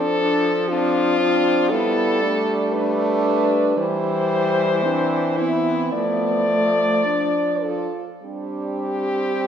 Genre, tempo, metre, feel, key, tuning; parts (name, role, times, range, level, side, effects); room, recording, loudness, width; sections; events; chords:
classical, lyrical piece for horn quartet; 49-59 BPM; 4/4; rubato; A4 = 440 Hz
warm French horn; melody; 0.0-9.5 s; E4 to D5; -21 LUFS; left 3 dB
warm French horn; second line; 0.0-9.5 s; A3 to F4; -26 LUFS; right 3 dB
warm French horn; accompaniment; 0.0-9.5 s; G3 to D4; -25 LUFS; equal
warm French horn; bass; 0.0-9.5 s; E3 to G3; -26 LUFS; right 2 dB
wet scoring stage reverb, RT60 1.9 s; heard from further back in the room; -18 LUFS; side -8 dB against mid
0.0-9.5 A section
0.0 Dm7/F; 1.7 G; 3.8 C/E; 5.9 Dm/F; 8.2 Gsus4